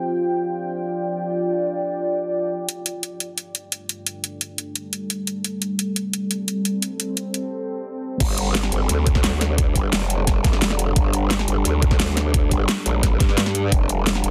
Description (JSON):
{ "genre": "dark technical drum and bass", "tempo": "174 BPM", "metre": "4/4", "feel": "straight", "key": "unclear", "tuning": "A4 = 441 Hz", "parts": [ { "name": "deep dark ambient pad", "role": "sustained chords", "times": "0.0-14.3 s", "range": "G3 to G5", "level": "-28 LUFS", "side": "equal", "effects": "chorus, built-in reverb, sidechain pumping" }, { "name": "dubstep drum kit", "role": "drums", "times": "2.7-14.3 s", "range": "crash cymbal, hi-hat, snare drum", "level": "-25 LUFS", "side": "equal", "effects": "none" }, { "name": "growl bass", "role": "bass", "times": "8.2-14.3 s", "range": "F1 to G2", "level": "-24 LUFS", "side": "equal", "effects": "chorus, overdrive" }, { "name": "electronic kick drum", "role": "drums", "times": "8.2-13.8 s", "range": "none", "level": "-21 LUFS", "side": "equal", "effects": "none" } ], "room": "light reverb", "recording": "dense, heavily limited modern master, high-pass filter", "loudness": "-22 LUFS", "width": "mono", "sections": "0.0-2.7 A section; 2.7-8.2 B section; 8.2-14.3 C section", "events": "filter sweep on ambient pad 0.0-2.7; build-up 2.7-8.2; filter sweep 2.7-8.2; break 7.5-8.2; drop 8.2-14.3", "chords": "0.0 F5; 2.7 G5; 8.2 G7(no3); 13.7 F5", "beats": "0.27 0.62 0.96 | 1.31 1.65 2.00 2.34 | 2.69 3.03 3.38 3.72 | 4.07 4.41 4.75 5.10 | 5.45 5.79 6.13 6.48 | 6.82 7.17 7.51 7.86 | 8.20 8.55 8.89 9.24 | 9.58 9.93 10.27 10.62 | 10.96 11.31 11.65 12.00 | 12.34 12.69 13.03 13.38 | 13.72 14.06" }